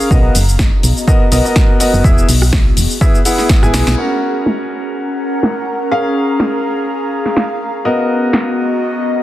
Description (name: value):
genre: piano house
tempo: 124 BPM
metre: 4/4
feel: swing 55% on 16ths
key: F# major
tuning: A4 = 440 Hz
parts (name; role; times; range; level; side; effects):
- bright grand piano; riff; 0.0-9.2 s; B3 to G#5; -17 LUFS; left 1 dB; sidechain pumping, dub echo
- punchy analog drum machine; drums; 0.0-8.4 s; cabasa, crash cymbal, hi-hat, rim click, snare drum; -18 LUFS; equal; low-pass filter on snare, low-pass filter on perc, low-pass filter on hats, low-pass filter on cymbals
- airy breathy pad; texture; 0.0-9.2 s; B3 to B5; -20 LUFS; equal; chorus, sidechain pumping
- solid FM bass; bass; 0.1-4.0 s; E1 to B1; -14 LUFS; equal; sidechain pumping
- electronic kick drum; drums; 0.1-3.6 s; none; -12 LUFS; equal; none
room: light reverb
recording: dense, heavily limited modern master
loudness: -11 LUFS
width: side -14 dB against mid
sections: 0.0-4.0 A section; 4.0-9.2 B section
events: drum fill 3.7; band accent 3.9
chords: 0.1 Bmaj7; 2.0 E; 4.0 F#; 5.9 A#m7; 7.8 Bmaj7